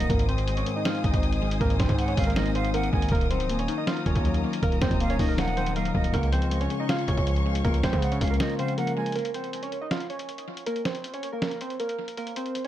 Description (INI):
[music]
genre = hip hop, trap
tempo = 159 BPM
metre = 4/4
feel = half-time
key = unclear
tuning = A4 = 438 Hz
[part]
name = soft electric-piano-like synth keys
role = melody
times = 0.0-12.7 s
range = Bb3 to F5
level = -31 LUFS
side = right 2 dB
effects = chorus, tape echo
[part]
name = breathy reedy concert flute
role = second line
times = 0.0-9.1 s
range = Eb5 to Ab5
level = -36 LUFS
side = right 3 dB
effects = tape echo
[part]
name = warbly lo-fi synth keys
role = accompaniment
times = 0.0-9.2 s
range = Ab2 to F4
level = -29 LUFS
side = left 2 dB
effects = chorus, tape echo
[part]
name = dark symphonic string section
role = sustained chords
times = 0.0-9.1 s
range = Ab4 to Eb6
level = -37 LUFS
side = left 3 dB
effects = none
[part]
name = distorted 808-style bass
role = bass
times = 0.0-8.4 s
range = Db1 to Db3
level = -28 LUFS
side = equal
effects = distortion
[part]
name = lo-fi sampler-style drum kit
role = drums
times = 0.0-12.7 s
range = hi-hat, kick drum, snare drum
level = -28 LUFS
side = equal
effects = none
[sound]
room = light reverb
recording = echo-heavy mix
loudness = -24 LUFS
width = side -12 dB against mid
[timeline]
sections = 0.0-9.2 A section; 9.2-12.7 B section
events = break 8.4-9.2, 9.2-12.7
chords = 0.1 Ab; 3.1 Ebmadd9; 6.1 Db; 9.2 Bbmadd9